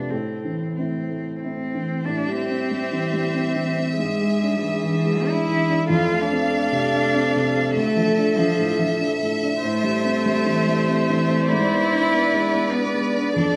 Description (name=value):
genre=neoclassical piano and strings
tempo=96 BPM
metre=3/4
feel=rubato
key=A minor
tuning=A4 = 435 Hz
part: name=rich cello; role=second line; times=0.0-13.6 s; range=E3 to F4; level=-26 LUFS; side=equal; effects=none
part: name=dark upright piano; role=accompaniment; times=0.0-13.6 s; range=D2 to B4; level=-26 LUFS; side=equal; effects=none
part: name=rich chamber violin section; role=melody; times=2.1-13.6 s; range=D5 to F5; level=-29 LUFS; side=equal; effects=none
part: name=clear viola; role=accompaniment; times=2.1-13.6 s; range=G4 to C5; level=-29 LUFS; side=equal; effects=none
room=moderate recital hall reverb, RT60 1.7 s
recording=none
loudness=-21 LUFS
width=mono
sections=0.0-2.1 A section; 2.1-13.6 B section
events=none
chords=0.1 Am; 2.1 Am7; 4.0 E7/G#; 5.9 F6; 7.8 Dmadd9; 9.6 Am7; 11.5 E7/G#